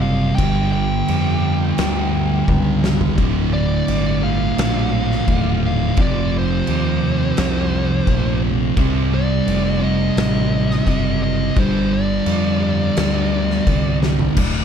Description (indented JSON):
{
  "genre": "stoner and doom metal",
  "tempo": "86 BPM",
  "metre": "4/4",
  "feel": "straight",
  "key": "unclear",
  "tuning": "A4 = 440 Hz",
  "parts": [
    { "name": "fuzz lead guitar", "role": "melody", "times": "0.0-14.0 s", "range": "C5 to G5", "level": "-26 LUFS", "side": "left 1 dB", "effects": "distortion, digital delay" },
    { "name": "thick fuzz guitar", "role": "riff", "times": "0.0-14.6 s", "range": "D2 to C4", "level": "-23 LUFS", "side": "left 11 dB", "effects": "distortion" },
    { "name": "thick fuzz guitar", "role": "riff", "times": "0.0-14.4 s", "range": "D2 to C4", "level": "-21 LUFS", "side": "right 10 dB", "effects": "distortion" },
    { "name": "growling picked electric bass", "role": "bass", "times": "0.0-14.6 s", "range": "D1 to F2", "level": "-22 LUFS", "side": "left 1 dB", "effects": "overdrive" },
    { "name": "oversized low-tuned drum kit", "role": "drums", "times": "0.4-14.5 s", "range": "crash cymbal, kick drum, snare drum, toms", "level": "-23 LUFS", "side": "equal", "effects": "none" }
  ],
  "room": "little or no reverb",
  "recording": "dark, warm production",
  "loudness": "-16 LUFS",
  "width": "side -8 dB against mid",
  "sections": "0.0-14.4 A section",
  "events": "drum fill 2.5-3.2, 14.0-14.4",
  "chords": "0.4 G5; 3.2 Dm; 6.0 F5; 8.8 Cm; 11.6 G5"
}